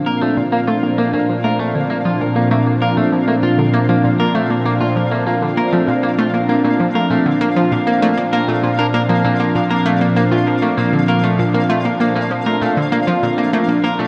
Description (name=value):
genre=ambient, sequencer-driven space music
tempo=98 BPM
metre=4/4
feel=straight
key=Bb major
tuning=A4 = 442 Hz
part: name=phased analog pad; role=sustained chords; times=0.0-14.1 s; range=Bb2 to D4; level=-19 LUFS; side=equal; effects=phaser, chorus
part: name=pulsing gated texture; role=texture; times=0.0-14.1 s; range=F5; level=-28 LUFS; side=equal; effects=chorus, built-in reverb, shimmer reverb
part: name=semi-hollow electric guitar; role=arpeggios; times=0.1-14.1 s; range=A3 to Bb4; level=-23 LUFS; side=equal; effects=delay, shimmer reverb
part: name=analog pluck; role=riff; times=0.1-14.1 s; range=Bb2 to D4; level=-22 LUFS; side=equal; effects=chorus, delay, shimmer reverb
room=wet huge ambient reverb, RT60 7.6 s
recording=nothing above 10.4 kHz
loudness=-16 LUFS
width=mono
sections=0.0-14.1 A section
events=none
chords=0.0 Bbmaj7